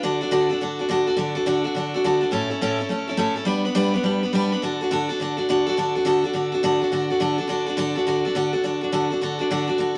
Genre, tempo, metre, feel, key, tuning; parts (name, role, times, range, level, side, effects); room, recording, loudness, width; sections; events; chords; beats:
rock; 209 BPM; 4/4; swing 64% on 8ths; D major; A4 = 440 Hz
picked steel-string acoustic guitar; solo; 0.0-10.0 s; A2 to B4; -23 LUFS; equal
moderate small room reverb, RT60 0.6 s; -23 LUFS; mono
0.0-6.9 A section; 6.9-10.0 A section
0.0 D; 2.3 A; 3.5 G; 4.6 D
| 0.04 0.32 0.61 0.90 | 1.18 1.47 1.75 2.04 | 2.33 2.61 2.90 3.19 | 3.47 3.76 4.04 4.33 | 4.62 4.91 5.19 5.48 | 5.76 6.05 6.34 6.62 | 6.91 7.20 7.49 7.77 | 8.06 8.35 8.63 8.92 | 9.21 9.49 9.78